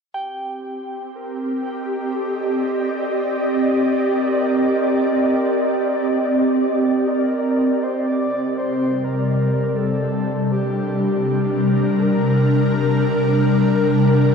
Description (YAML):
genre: ambient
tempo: free time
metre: none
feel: none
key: C dorian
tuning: A4 = 440 Hz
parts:
  - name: breathy flute-like synth lead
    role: melody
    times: 0.1-14.3 s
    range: G4 to D5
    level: -27 LUFS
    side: right 1 dB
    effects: wide subtle chorus, vintage 12-bit sampler grit, diffuse ambient delay
  - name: ethereal airy pad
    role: sustained chords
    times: 0.7-14.3 s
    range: C3 to Eb5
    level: -17 LUFS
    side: equal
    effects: ensemble chorus, built-in reverb
  - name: soft synth bell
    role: arpeggios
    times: 0.1-8.1 s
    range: G5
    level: -34 LUFS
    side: right 1 dB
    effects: chorus, diffuse ambient delay
room: wet huge ambient reverb, RT60 7.5 s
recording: none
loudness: -17 LUFS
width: side -6 dB against mid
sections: 0.2-14.3 A section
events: fade-in on synth bell 0.2-14.3; fade-in on soft synth lead 0.2-14.3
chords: 0.2 Cm9; 8.1 Gm/C